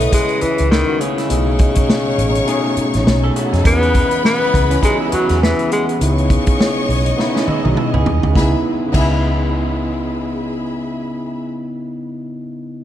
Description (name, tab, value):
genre	lush 1970s-style soul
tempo	102 BPM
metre	4/4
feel	swing 58% on 16ths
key	C# minor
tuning	A4 = 439 Hz
part	warm tenor saxophone	melody	0.0-7.2 s	C#3 to B3	-19 LUFS	left 2 dB	none
part	warm studio string section	second line	0.0-11.5 s	E4 to D#6	-26 LUFS	left 2 dB	slapback echo
part	overdriven tine electric piano	accompaniment	0.0-12.8 s	B2 to D#5	-22 LUFS	left 1 dB	none
part	warm studio string section	sustained chords	0.0-11.3 s	C#3 to D#5	-28 LUFS	left 1 dB	none
part	vintage muted fingered electric bass	bass	0.0-11.9 s	A1 to E#2	-19 LUFS	equal	none
part	warm soul drum kit	drums	0.0-9.1 s	crash cymbal, hi-hat, kick drum, snare drum, toms	-18 LUFS	equal	none
part	celesta	texture	0.0-11.3 s	E4 to B5	-30 LUFS	right 2 dB	none
part	electric guitar through a small old amp	riff	0.7-8.3 s	E3 to A4	-26 LUFS	right 4 dB	spring reverb
room	moderate concert hall reverb, RT60 2.6 s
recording	none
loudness	-14 LUFS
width	side -11 dB against mid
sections	0.0-8.4 A section; 8.4-10.7 B section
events	drum fill 7.2-8.4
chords	0.0 C#m7; 1.3 B13; 3.7 E6; 6.0 C#m9